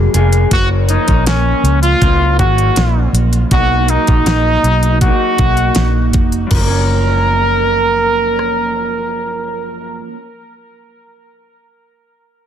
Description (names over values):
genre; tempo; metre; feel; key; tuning
indie pop, bedroom pop; 80 BPM; 4/4; straight; F# major; A4 = 440 Hz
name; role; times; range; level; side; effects
electric guitar through a small old amp; accompaniment; 0.0-10.2 s; F#2 to G#4; -19 LUFS; right 1 dB; lush chorus, vibrato effect
vintage muted fingered electric bass; bass; 0.0-10.0 s; E#1 to C#2; -14 LUFS; equal; none
pop drum kit; drums; 0.1-8.6 s; crash cymbal, hi-hat, kick drum, rim click, snare drum; -16 LUFS; equal; none
clear trumpet; melody; 0.5-10.0 s; C#4 to A#4; -16 LUFS; equal; analog chorus, tape echo
room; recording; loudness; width
light reverb, digital ambience; dense, heavily limited modern master; -11 LUFS; side -9 dB against mid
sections
0.5-6.5 A section; 6.5-9.5 B section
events
none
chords
0.0 F#maj9; 0.5 F#maj7; 3.5 Bmaj7; 6.5 F#maj7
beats
| 0.52 1.26 2.01 2.76 | 3.51 4.26 5.01 5.76 | 6.51 7.26 8.01 8.77